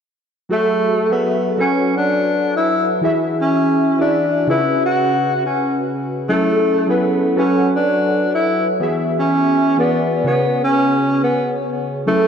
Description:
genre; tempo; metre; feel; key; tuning
hip hop; 83 BPM; 4/4; swing 65% on 16ths; F# minor; A4 = 439 Hz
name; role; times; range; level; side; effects
breathy tenor saxophone; melody; 0.5-12.3 s; A3 to F#4; -16 LUFS; equal; ping-pong delay
warbly lo-fi synth keys; accompaniment; 0.5-12.3 s; C#3 to F#5; -19 LUFS; equal; chorus, cassette tape
room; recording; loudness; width
wet plate reverb, RT60 2.8 s; dreamy mix soaked in reverb, cassette tape; -15 LUFS; side -7 dB against mid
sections
0.5-12.3 A section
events
none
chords
0.5 F#m9; 1.6 Bsus2/F#; 3.0 E; 4.5 C#7sus4; 6.3 F#m9; 7.4 Bsus2/F#; 8.8 E7; 10.3 C#7sus4

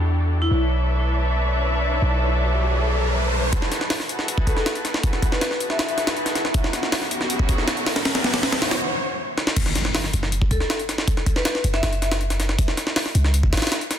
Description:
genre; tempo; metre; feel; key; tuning
drum and bass, jungle; 159 BPM; 4/4; straight; F# minor; A4 = 439 Hz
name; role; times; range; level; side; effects
muted chamber string section; sustained chords; 0.0-8.8 s; B3 to E5; -26 LUFS; equal; low-pass filter
warm 808-style bass; bass; 0.0-3.5, 10.1-13.6 s; F#1 to E2; -21 LUFS; equal; tube saturation
vibraphone with hard mallets; melody; 0.4-0.5, 4.5-6.1, 10.5-12.1 s; E4 to E5; -29 LUFS; left 2 dB; vintage 12-bit sampler grit, low-pass filter, dub echo
riser and impact; sound effects; 1.2-11.1 s; none; -28 LUFS; equal; none
jungle sampler-style drum kit; drums; 3.5-14.0 s; crash cymbal, hi-hat, kick drum, snare drum; -22 LUFS; equal; small room ambience
room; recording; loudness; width
light reverb; dense, heavily limited modern master; -19 LUFS; side -9 dB against mid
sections
0.0-3.5 A section; 3.5-9.6 B section; 9.6-14.0 C section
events
riser 1.2-3.5, 3.5-8.8; build-up 3.5-9.6; filter sweep on vibraphone 3.5-9.6; break 8.8-9.6; drum fill 9.4; drop 9.6-14.0; impact 9.6-11.1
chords
0.0 Em11; 0.5 Bm11; 3.5 F#m11; 6.5 C#m11; 9.6 F#5; 12.6 N.C.

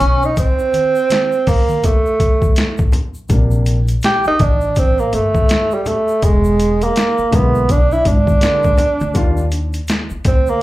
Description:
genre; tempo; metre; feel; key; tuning
hip hop, jazz-hop; 82 BPM; 4/4; swing 61% on 16ths; Bb major; A4 = 439 Hz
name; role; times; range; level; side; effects
breathy tenor saxophone; melody; 0.0-10.6 s; G3 to G4; -16 LUFS; right 2 dB; plate reverb, slapback echo
upright bass; bass; 0.0-10.6 s; E1 to Eb2; -17 LUFS; equal; none
boom bap sampler-style drum kit; drums; 0.0-10.5 s; hi-hat, kick drum, snare drum; -16 LUFS; equal; overdrive
congas and egg shaker; percussion; 0.0-10.6 s; none; -26 LUFS; left 2 dB; slapback echo
dark concert grand piano; accompaniment; 3.3-9.4 s; C3 to F4; -22 LUFS; left 2 dB; plate reverb, slapback echo
room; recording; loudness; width
light reverb; live gig heard through the venue's PA, club reverb; -12 LUFS; side -16 dB against mid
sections
0.0-3.3 A section; 3.3-10.6 B section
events
tenor saxophone solo 3.3-10.6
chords
0.4 N.C.; 3.3 Bb69; 6.2 E7#11; 9.2 Ebmaj9

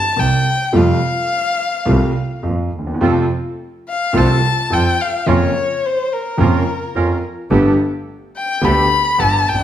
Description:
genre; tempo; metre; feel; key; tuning
tango; 107 BPM; 4/4; rubato; F major; A4 = 439 Hz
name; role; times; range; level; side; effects
warm violin; second line; 0.0-9.6 s; Bb4 to B5; -18 LUFS; left 4 dB; slapback echo
warm concert grand piano; accompaniment; 0.2-9.6 s; G1 to G4; -17 LUFS; right 1 dB; none
clear double bass; bass; 0.2-9.6 s; G1 to F2; -20 LUFS; right 2 dB; none
bandoneon; stabs; 3.0-9.4 s; B3 to Bb4; -24 LUFS; right 6 dB; none
room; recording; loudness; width
wet large studio reverb, RT60 1.3 s; none; -14 LUFS; side -10 dB against mid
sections
0.0-9.6 A section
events
violin solo 0.0-9.6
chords
0.0 C5; 0.7 Fadd9; 3.0 F; 5.3 Bbm/F; 7.5 Gadd9

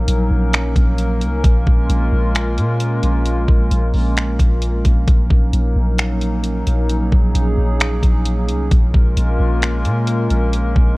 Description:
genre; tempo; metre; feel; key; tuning
hip hop, atmospheric cloud-rap; 132 BPM; 4/4; half-time; Bb minor; A4 = 441 Hz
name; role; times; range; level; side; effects
hollow soft pad; sustained chords; 0.0-11.0 s; Gb3 to Bb4; -22 LUFS; equal; chorus, sidechain pumping
soft 808-style bass; bass; 0.0-11.0 s; Bb1 to Bb2; -17 LUFS; equal; none
smooth R&B drum kit; drums; 0.1-10.9 s; finger snaps, hi-hat, kick drum; -16 LUFS; equal; none
room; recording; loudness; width
little or no reverb; worn, warbling old tape, cassette tape, warbly pitch drift; -14 LUFS; side -22 dB against mid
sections
0.0-11.0 A section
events
none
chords
0.0 Ebm7/Bb; 1.4 Bbm7; 5.1 Ebm7/Bb; 8.7 Bbm7

